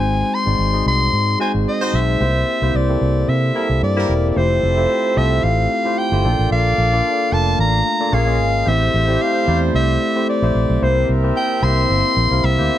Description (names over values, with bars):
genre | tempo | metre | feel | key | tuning
pop | 111 BPM | 4/4 | swing 54% on 16ths | F major | A4 = 437 Hz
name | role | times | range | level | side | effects
breathy soprano saxophone | melody | 0.0-12.8 s | C5 to C6 | -20 LUFS | left 1 dB | plate reverb
barky tine electric piano | accompaniment | 0.0-12.8 s | Ab3 to F5 | -20 LUFS | left 1 dB | lush chorus, plate reverb
vintage muted fingered electric bass | bass | 0.0-12.7 s | E1 to C3 | -18 LUFS | equal | none
warm horn section | second line | 1.4-12.7 s | G3 to E5 | -26 LUFS | right 2 dB | plate reverb
room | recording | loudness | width
moderate studio reverb, RT60 0.5 s | none | -15 LUFS | side -12 dB against mid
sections
0.0-4.4 A section; 4.4-12.8 B section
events
none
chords
0.0 Ab7; 2.2 C7; 4.4 Fmaj9; 6.2 Bbmaj7; 8.1 Bbm7; 8.7 Am7; 10.8 C7